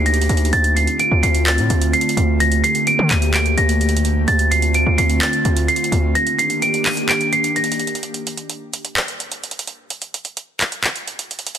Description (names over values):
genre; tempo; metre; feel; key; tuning
hip hop, trap; 128 BPM; 4/4; half-time; D phrygian; A4 = 441 Hz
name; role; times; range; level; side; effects
airy breathy pad; sustained chords; 0.0-8.0 s; D3 to G4; -22 LUFS; equal; chorus
distorted 808-style bass; bass; 0.0-6.1 s; D2 to D3; -17 LUFS; equal; distortion
celesta; melody; 0.1-8.0 s; A6 to Eb7; -18 LUFS; right 1 dB; low-pass filter, ping-pong delay
trap drum kit; drums; 0.1-11.6 s; handclaps, hi-hat; -23 LUFS; right 1 dB; none
room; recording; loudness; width
digital ambience; dense, heavily limited modern master; -15 LUFS; side -9 dB against mid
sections
0.0-8.0 A section; 8.0-11.6 B section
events
kick muted 6.2-8.0; break 8.0-11.6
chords
0.0 Ebmaj7/D; 0.5 Dm7; 2.4 Gmadd9/D; 4.3 Dm7; 6.2 Ebmaj7; 8.0 N.C.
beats
0.06 | 0.53 1.00 1.47 1.94 | 2.40 2.87 3.34 3.81 | 4.28 4.75 5.22 5.68 | 6.15 6.62 7.09 7.56 | 8.03 8.50 8.97 9.44 | 9.90 10.37 10.84 11.31